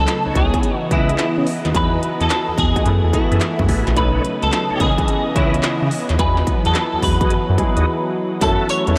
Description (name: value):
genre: R&B, new jack swing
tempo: 108 BPM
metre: 4/4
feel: swing 65% on 16ths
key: F# dorian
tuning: A4 = 440 Hz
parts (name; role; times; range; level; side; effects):
- clean electric guitar; melody; 0.0-9.0 s; E4 to C#5; -24 LUFS; equal; ensemble chorus, diffuse ambient delay
- clear baby grand piano; accompaniment; 0.0-9.0 s; D#3 to G#5; -27 LUFS; equal; ensemble chorus
- sweeping resonant pad; sustained chords; 0.0-9.0 s; C#3 to D#5; -26 LUFS; equal; chorus
- smooth synth bass; bass; 0.0-9.0 s; A1 to C#3; -22 LUFS; equal; none
- industrial drum kit; drums; 0.1-9.0 s; handclaps, hi-hat, kick drum, snare drum, tambourine; -24 LUFS; equal; distortion
- tonewheel organ; stabs; 0.3-8.7 s; D#4 to E5; -32 LUFS; equal; overdrive, chorus vibrato, slow rotary speaker, diffuse ambient delay
room: moderate huge ambient reverb, RT60 4.8 s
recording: dreamy mix soaked in reverb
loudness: -18 LUFS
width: mono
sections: 0.0-8.4 A section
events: break 7.9-8.4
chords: 0.4 C#m9; 1.7 Emaj9; 2.9 F#m11; 4.0 B9; 4.8 C#m9; 6.2 Emaj9; 8.4 F#m7